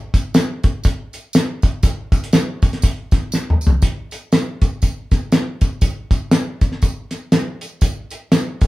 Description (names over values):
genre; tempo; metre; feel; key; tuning
soul; 120 BPM; 4/4; swing 58% on 8ths; none; none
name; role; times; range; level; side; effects
cloth-damped thuddy drum kit; drums; 0.1-8.7 s; hi-hat, kick drum, snare drum, toms; -15 LUFS; equal; none
tambourine; percussion; 0.1-8.7 s; none; -33 LUFS; right 2 dB; none
room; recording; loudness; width
wet small room reverb, RT60 0.5 s; band playing live in one room; -16 LUFS; side -18 dB against mid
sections
0.0-3.8 A section; 3.8-8.7 B section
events
drum fill 3.3-3.8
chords
none